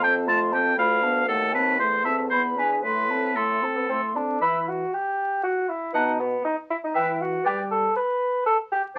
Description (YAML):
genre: quick classical-period movement for wind quintet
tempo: 118 BPM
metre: 3/4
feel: rubato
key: A minor, E minor from 4.4 s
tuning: A4 = 440 Hz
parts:
  - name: mellow hollow silver concert flute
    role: melody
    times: 0.0-7.7 s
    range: F#5 to C6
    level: -28 LUFS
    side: equal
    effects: none
  - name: bright oboe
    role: second line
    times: 0.0-9.0 s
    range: A4 to A5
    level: -26 LUFS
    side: equal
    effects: none
  - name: dark clarinet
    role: accompaniment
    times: 0.0-9.0 s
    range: D4 to C5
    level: -36 LUFS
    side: equal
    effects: none
  - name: warm French horn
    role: accompaniment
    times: 0.0-7.9 s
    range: B2 to D4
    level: -34 LUFS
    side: equal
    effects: none
  - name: warm bassoon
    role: bass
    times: 0.0-8.8 s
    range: D2 to B4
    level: -28 LUFS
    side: equal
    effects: none
room: moderate studio ambience, RT60 0.5 s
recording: very old 78 rpm record, vinyl crackle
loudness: -24 LUFS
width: mono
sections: 0.0-4.4 A section; 4.4-9.0 B section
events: none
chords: 0.0 F; 0.8 Bm7b5/D; 1.3 D#dim7; 1.8 Am/E; 2.3 E7; 2.8 Am; 4.4 Em; 5.9 B7; 7.0 Em; 7.5 G